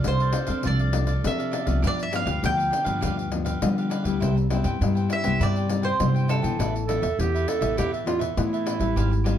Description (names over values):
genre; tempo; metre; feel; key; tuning
samba and choro; 101 BPM; 4/4; straight; unclear; A4 = 439 Hz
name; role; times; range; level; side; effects
mandolin; melody; 0.0-6.9 s; A4 to G5; -28 LUFS; right 2 dB; none
cavaquinho; accompaniment; 0.0-9.4 s; D4 to Ab5; -34 LUFS; right 3 dB; none
nylon-string guitar; accompaniment; 0.0-9.4 s; G2 to A4; -29 LUFS; left 5 dB; none
pandeiro; percussion; 0.0-9.4 s; none; -31 LUFS; left 5 dB; none
upright bass; bass; 0.1-9.3 s; Ab1 to G3; -25 LUFS; equal; none
warm clarinet; second line; 6.9-9.4 s; E4 to A4; -27 LUFS; right 5 dB; analog delay
room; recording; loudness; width
light reverb; dark, warm production; -22 LUFS; side -10 dB against mid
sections
0.0-9.4 A section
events
none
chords
0.0 F6; 1.8 G7; 4.2 Cmaj7; 6.6 Asus2